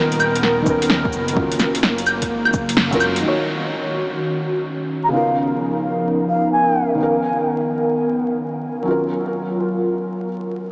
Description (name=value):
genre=future garage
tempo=128 BPM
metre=4/4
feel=swing 66% on 16ths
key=Eb minor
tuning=A4 = 440 Hz
part: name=felt-muted upright piano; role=accompaniment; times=0.0-10.7 s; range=Db3 to Db5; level=-22 LUFS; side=equal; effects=sidechain pumping, diffuse ambient delay
part: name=airy breathy pad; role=sustained chords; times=0.0-10.3 s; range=Eb3 to A#4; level=-21 LUFS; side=equal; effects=chorus, vintage 12-bit sampler grit, sidechain pumping
part: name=dark detuned saw bass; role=bass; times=0.0-3.2 s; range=D#1 to Ab1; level=-27 LUFS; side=equal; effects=tube saturation, sidechain pumping
part: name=deep house drum kit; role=drums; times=0.1-3.2 s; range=cabasa, claves, hi-hat, snare drum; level=-20 LUFS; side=equal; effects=overdrive, low-pass filter on hats, small room ambience, low-pass filter on perc, low-pass filter on snare
part: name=electronic kick drum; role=drums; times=0.7-3.0 s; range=none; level=-23 LUFS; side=equal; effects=overdrive, small room ambience
part: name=hollow baroque flute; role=melody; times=5.0-6.9 s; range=F5 to Bb5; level=-22 LUFS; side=equal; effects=diffuse ambient delay
room=wet huge ambient reverb, RT60 8.7 s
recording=dreamy mix soaked in reverb, vinyl crackle, small speaker sound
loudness=-17 LUFS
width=side -28 dB against mid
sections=0.0-3.2 A section; 3.2-10.7 B section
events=band accent 2.8; filter sweep on analog synth pad 3.2-10.7; stop 10.3-10.7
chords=0.0 Bmaj7/D#; 1.4 Gbmaj7; 3.2 Ebm7; 5.1 Db13; 7.0 Bmaj7/D#; 8.9 Gbmaj7